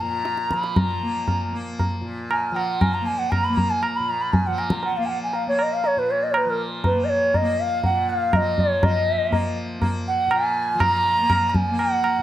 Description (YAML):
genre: indian classical, Hindustani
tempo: 120 BPM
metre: 4/4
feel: straight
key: Bb raga bhairavi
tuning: A4 = 440 Hz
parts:
  - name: reedy bansuri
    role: melody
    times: 0.0-12.2 s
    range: Bb4 to Cb6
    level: -22 LUFS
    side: equal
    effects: none
  - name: tanpura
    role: drone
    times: 0.0-12.2 s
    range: Bb2 to Bb3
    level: -29 LUFS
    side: left 1 dB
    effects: none
  - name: tabla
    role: percussion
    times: 0.3-12.2 s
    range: none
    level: -23 LUFS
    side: equal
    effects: none
room: light reverb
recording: close, detailed microphones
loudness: -19 LUFS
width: side -12 dB against mid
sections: 0.0-8.8 A section; 8.8-12.2 B section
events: speeding up 0.0-12.2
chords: none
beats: 0.26 | 0.77 1.29 1.80 2.31 | 2.81 3.32 3.83 4.33 | 4.84 5.34 5.84 6.34 | 6.84 7.34 7.84 8.34 | 8.83 9.33 9.82 10.32 | 10.81 11.30 11.79